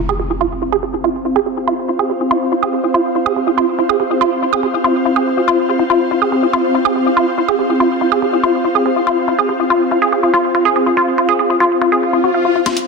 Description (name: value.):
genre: psychedelic trance.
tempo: 142 BPM.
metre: 4/4.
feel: straight.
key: F minor.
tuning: A4 = 440 Hz.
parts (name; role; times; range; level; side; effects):
impact, swell and riser; sound effects; 0.0-0.8, 12.0-12.9 s; none; -22 LUFS; equal; none.
ethereal airy pad; texture; 0.0-12.9 s; C4 to F5; -18 LUFS; equal; ensemble chorus, built-in reverb.
woody wave-folded pluck; riff; 0.1-12.7 s; F4 to F5; -14 LUFS; moving between left 4 dB and right 8 dB; chorus, auto-pan, ping-pong delay.
garage drum kit; drums; 12.7-12.9 s; bongos, hi-hat, snare drum; -18 LUFS; left 2 dB; small room ambience, soft clipping on snare.
room: wet digital room reverb, RT60 1.2 s.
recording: dense, heavily limited modern master.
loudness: -13 LUFS.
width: side -4 dB against mid.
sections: 0.0-12.7 A section.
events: impact 0.0-0.8; filter sweep on synth arpeggio sound 0.0-12.7; swell 12.0-12.7; drum fill 12.7.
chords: 0.0 F5.